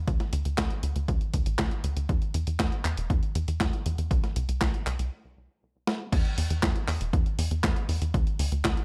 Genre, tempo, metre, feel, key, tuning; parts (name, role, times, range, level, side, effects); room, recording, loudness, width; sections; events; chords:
italo disco; 119 BPM; 4/4; straight; A4 = 441 Hz
tight sequencer bass; bass; 0.0-8.8 s; E1 to E2; -30 LUFS; equal; tube saturation
clean 12-bit digital drum machine; drums; 0.1-8.8 s; crash cymbal, handclaps, hi-hat, snare drum; -34 LUFS; equal; studio reverb
electronic kick drum; drums; 0.1-8.7 s; -30 LUFS; equal; studio reverb
digital ambience; dark, warm production; -28 LUFS; mono
0.0-6.1 A section; 6.1-8.8 B section
stop 5.1-6.1; drum fill 5.9